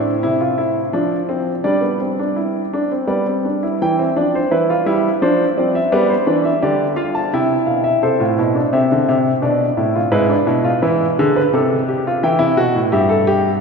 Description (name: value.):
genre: classical, baroque-style 3-part fugue for grand piano.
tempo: 85 BPM.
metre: 3/4.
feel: straight.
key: C major, A minor from 8.0 s.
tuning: A4 = 440 Hz.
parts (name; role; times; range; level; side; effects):
warm grand piano; solo; 0.0-13.6 s; G2 to A5; -14 LUFS; equal; none.
room: wet cathedral reverb, RT60 4.8 s.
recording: recorded in a church or concert hall.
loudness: -14 LUFS.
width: side -5 dB against mid.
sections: 0.0-3.8 A section; 3.8-8.0 B section; 8.0-13.6 C section.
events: none.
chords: 0.0 Am; 0.9 Dm/F; 1.6 Gsus4; 3.8 C/E; 5.2 Dm7/F; 5.9 G; 7.3 C; 8.0 Am; 9.4 Bm7b5; 10.1 E/G#; 11.5 Am/C; 12.2 Em.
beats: 0.22 0.93 | 1.65 2.37 3.09 | 3.80 4.51 5.21 | 5.91 6.61 7.31 | 8.02 8.73 9.43 | 10.13 10.83 11.53 | 12.22 12.91.